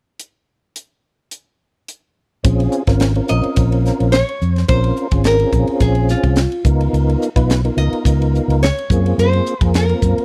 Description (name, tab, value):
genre	electric jazz fusion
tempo	107 BPM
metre	4/4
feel	swing 53% on 16ths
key	Bb minor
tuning	A4 = 440 Hz
part	crisp fusion drum kit	drums	0.2-10.2 s	hi-hat, kick drum, ride cymbal, snare drum	-21 LUFS	equal	none
part	mellow tonewheel organ	accompaniment	2.4-10.2 s	Bb3 to Cb5	-22 LUFS	equal	slow rotary speaker, chorus vibrato
part	fingered electric bass	bass	2.5-10.2 s	Ab1 to Gb2	-18 LUFS	equal	none
part	nylon-string guitar	melody	3.3-10.2 s	F4 to Eb5	-23 LUFS	equal	slapback echo
room	studio ambience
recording	dry, close 1970s-style studio recording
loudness	-16 LUFS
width	mono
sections	0.2-2.4 A section; 2.4-10.2 B section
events	none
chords	0.2 N.C.; 2.4 Bbm9; 6.7 Db13; 8.9 Gbmaj9#11